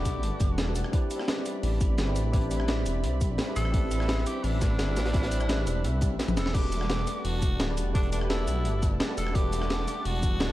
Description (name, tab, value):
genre	liquid drum and bass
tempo	171 BPM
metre	4/4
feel	straight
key	E minor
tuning	A4 = 440 Hz
part	raspy tenor saxophone	melody	0.0-0.6, 3.6-10.5 s	D4 to A4	-36 LUFS	equal	dub echo
part	tine electric piano	accompaniment	0.0-10.5 s	G3 to F#5	-34 LUFS	equal	overdrive, lush chorus, dub echo
part	lush unison pad	sustained chords	0.0-10.5 s	G3 to B5	-38 LUFS	equal	chorus, sidechain pumping
part	dark detuned saw bass	bass	0.0-10.5 s	D1 to C2	-29 LUFS	equal	none
part	breakbeat sampler-style drum kit	drums	0.1-10.5 s	cabasa, crash cymbal, hi-hat, rim click, snare drum, toms	-33 LUFS	equal	none
part	crunchy breakbeat drum kit	drums	0.1-10.5 s	hi-hat, snare drum	-38 LUFS	equal	high-pass filter on hats, high-pass filter on snare, high-pass filter on room
part	electronic kick drum	drums	0.1-10.3 s	none	-27 LUFS	equal	none
room	light reverb, digital ambience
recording	dark, warm production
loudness	-25 LUFS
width	side -15 dB against mid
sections	0.0-10.5 A section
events	drum fill 6.2-6.5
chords	0.0 Em11; 0.9 Am11; 6.5 Em11